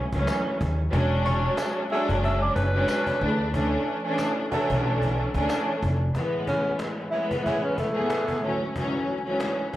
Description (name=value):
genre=hip hop, boom-bap hip-hop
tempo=92 BPM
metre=4/4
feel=swing 56% on 16ths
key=unclear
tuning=A4 = 440 Hz
part: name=dark studio string section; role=accompaniment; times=0.0-9.8 s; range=D2 to G#4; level=-26 LUFS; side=equal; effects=high-pass filter, low-pass filter
part: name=upright bass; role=bass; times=0.1-6.1 s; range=E1 to D#2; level=-25 LUFS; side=equal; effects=transformer saturation
part: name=cajon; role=drums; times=0.1-9.8 s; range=none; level=-34 LUFS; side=equal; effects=none
part: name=tambourine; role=percussion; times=0.3-5.7 s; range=none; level=-45 LUFS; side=right 2 dB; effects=none
part: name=breathy tenor saxophone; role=melody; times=1.3-8.7 s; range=A3 to E5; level=-29 LUFS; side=equal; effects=high-pass filter, low-pass filter, tape echo
part: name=bright saxophone section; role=stabs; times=1.9-9.8 s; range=D3 to A4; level=-34 LUFS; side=right 1 dB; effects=high-pass filter, low-pass filter, tape echo
room=light reverb, studio reverb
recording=vinyl crackle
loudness=-23 LUFS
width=side -14 dB against mid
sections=0.0-6.1 A section; 6.1-9.8 B section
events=none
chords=0.0 Dmaj9#11; 0.9 E13; 3.2 Bm11/D; 6.1 Amaj9; 8.4 Dmaj9#11